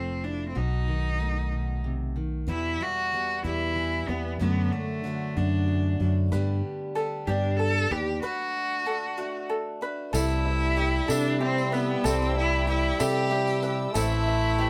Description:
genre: indie folk with a building arrangement.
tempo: 63 BPM (dotted quarters).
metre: 6/8.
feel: straight.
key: unclear.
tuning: A4 = 440 Hz.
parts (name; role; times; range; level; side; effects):
clear cello; melody; 0.0-14.7 s; A3 to A4; -31 LUFS; equal; none.
fingerpicked steel-string acoustic guitar; accompaniment; 0.0-8.2 s; E2 to F#4; -37 LUFS; equal; none.
fingered electric bass; bass; 0.0-14.7 s; F1 to C3; -30 LUFS; equal; none.
picked acoustic archtop guitar; accompaniment; 2.5-14.7 s; E2 to G4; -39 LUFS; equal; none.
ukulele; arpeggios; 6.3-14.7 s; F#4 to B4; -35 LUFS; equal; none.
warm French horn; second line; 10.1-14.7 s; G3 to A3; -34 LUFS; equal; none.
clear upright piano; accompaniment; 10.1-14.7 s; A1 to E5; -39 LUFS; equal; none.
warm chamber string section; sustained chords; 10.1-14.7 s; A4 to E6; -42 LUFS; equal; none.
tambourine; percussion; 10.1-14.2 s; none; -40 LUFS; equal; none.
room: light reverb.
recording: band playing live in one room.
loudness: -27 LUFS.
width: mono.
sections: 0.0-2.5 A section; 2.5-10.1 B section; 10.1-14.7 C section.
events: break 8.2-10.1.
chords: 0.0 Fmaj7; 0.6 B7; 2.5 Em; 4.4 D/F#; 6.3 G; 8.2 D; 10.1 C6; 14.0 Am.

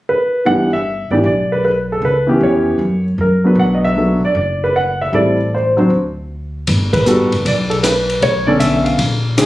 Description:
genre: jazz piano trio.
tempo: 155 BPM.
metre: 4/4.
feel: swing 66% on 8ths.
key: G major.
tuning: A4 = 439 Hz.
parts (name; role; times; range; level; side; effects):
warm concert grand piano; melody; 0.1-9.5 s; D3 to F#5; -14 LUFS; equal; none.
upright bass; bass; 0.5-9.5 s; F#1 to F#2; -20 LUFS; equal; none.
compact cocktail drum kit; drums; 6.7-9.5 s; hi-hat, kick drum, ride cymbal, rim click; -20 LUFS; left 2 dB; none.
room: light reverb.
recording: recorded on a phone in the room, studio reverb, compression.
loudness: -13 LUFS.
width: side -16 dB against mid.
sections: 0.5-6.7 A section; 6.7-9.5 B section.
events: band accent 6.9.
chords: 0.5 G6; 2.0 C#m7b5; 2.8 F#; 3.6 Bm; 5.1 Am7; 5.9 N.C.; 6.7 G; 8.2 Bm9.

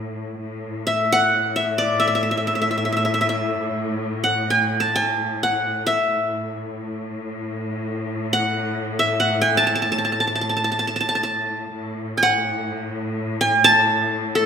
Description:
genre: arabic.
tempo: free time.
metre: none.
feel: none.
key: A maqam rast.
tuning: A4 = 441 Hz.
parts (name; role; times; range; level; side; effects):
rich studio cello section; drone; 0.0-14.5 s; A2; -26 LUFS; left 1 dB; none.
qanun; melody; 0.9-14.5 s; A4 to A5; -18 LUFS; equal; none.
room: wet recital hall reverb, RT60 1.6 s.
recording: minimal, uncompressed stereo recording.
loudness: -18 LUFS.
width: side -7 dB against mid.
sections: 0.0-14.5 A section.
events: none.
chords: none.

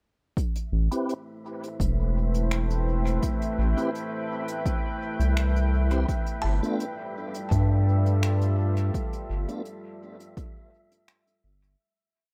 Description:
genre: ambient dub.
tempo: 84 BPM.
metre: 4/4.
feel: straight.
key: A minor.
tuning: A4 = 440 Hz.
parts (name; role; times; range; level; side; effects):
deep dark ambient pad; sustained chords; 1.3-11.8 s; G3 to G5; -35 LUFS; equal; chorus, built-in reverb.
electronic kick drum; drums; 0.4-10.5 s; none; -32 LUFS; equal; none.
soft brush drum kit; drums; 0.4-11.8 s; finger snaps, hi-hat; -43 LUFS; equal; dub echo.
wind-like tuned noise texture; texture; 1.6-11.8 s; E5; -44 LUFS; equal; built-in reverb.
round analog bass; bass; 0.7-11.8 s; E1 to G2; -25 LUFS; equal; none.
mellow tonewheel organ; stabs; 0.9-9.6 s; A3 to B4; -35 LUFS; equal; chorus vibrato, fast rotary speaker, low-pass filter, dub echo.
buzzing kalimba; arpeggios; 6.4-8.0 s; A5; -41 LUFS; equal; tape echo.
room: little or no reverb.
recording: echo-heavy mix.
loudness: -26 LUFS.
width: mono.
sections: 0.4-11.8 groove.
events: filter sweep on tonewheel organ 0.4-11.8; fade-out 8.0-11.8.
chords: 0.4 Am9; 6.1 G7.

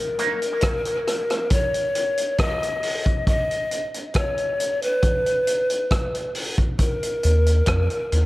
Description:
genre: dub reggae.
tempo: 68 BPM.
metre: 4/4.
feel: straight.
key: Eb minor.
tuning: A4 = 443 Hz.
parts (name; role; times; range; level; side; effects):
breathy hollow large pan pipes; melody; 0.0-8.3 s; Bb4 to Eb5; -23 LUFS; left 1 dB; dub echo.
vintage drum kit; drums; 0.2-8.3 s; hi-hat, kick drum, rim click; -24 LUFS; equal; none.
soft dub sub bass; bass; 7.2-8.3 s; Eb2 to F2; -17 LUFS; equal; none.
room: light reverb, small room ambience.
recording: none.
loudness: -20 LUFS.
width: side -18 dB against mid.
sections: 0.0-8.3 A section.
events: break 0.0-6.8.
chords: 0.0 Ebm; 3.3 N.C.; 6.8 Eb5.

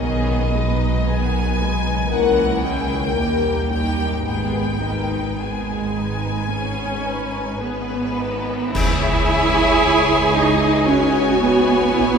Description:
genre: classical, slow romantic movement for symphony orchestra.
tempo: 50-59 BPM.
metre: 4/4.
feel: rubato.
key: G# minor, C# minor from 8.8 s.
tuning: A4 = 443 Hz.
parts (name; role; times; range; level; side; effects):
rich studio violin section; melody; 0.0-12.2 s; B4 to G#5; -27 LUFS; left 3 dB; none.
rich studio violin section; second line; 0.0-12.2 s; B3 to G#5; -25 LUFS; left 2 dB; none.
dark studio viola section; accompaniment; 0.0-12.2 s; D#3 to G#4; -24 LUFS; right 1 dB; none.
concert harp; arpeggios; 0.0-12.2 s; G#2 to C#6; -27 LUFS; left 7 dB; none.
rich studio double bass section; bass; 0.0-12.2 s; G#1 to D#2; -24 LUFS; right 1 dB; none.
warm studio cello section; bass; 0.0-12.2 s; D#2 to E4; -22 LUFS; right 3 dB; none.
cymbal swell, clash cymbals and concert bass drum; percussion; 4.3-10.8 s; none; -27 LUFS; left 1 dB; none.
room: wet cathedral reverb, RT60 6.2 s.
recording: recorded in a church or concert hall.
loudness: -17 LUFS.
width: side -6 dB against mid.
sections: 0.0-8.8 A section; 8.8-12.2 B section.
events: band accent 8.8-9.8.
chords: 0.0 G#m/B; 2.1 A#m7b5/C#; 3.2 D#; 4.3 G#m; 8.8 C#m.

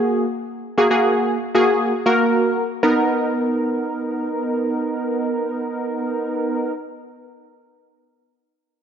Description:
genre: pop.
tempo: free time.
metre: none.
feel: none.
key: B major.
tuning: A4 = 440 Hz.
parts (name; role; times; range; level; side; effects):
funky polysynth comp; accompaniment; 0.0-6.7 s; A#3 to A#4; -18 LUFS; right 1 dB; chorus.
room: moderate lush hall reverb, RT60 2.2 s.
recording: dark, warm production, nothing above 7.5 kHz.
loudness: -18 LUFS.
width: side -8 dB against mid.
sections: 0.0-2.8 A section; 2.8-6.9 B section.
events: none.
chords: 0.0 F#add9; 2.8 Bmaj7.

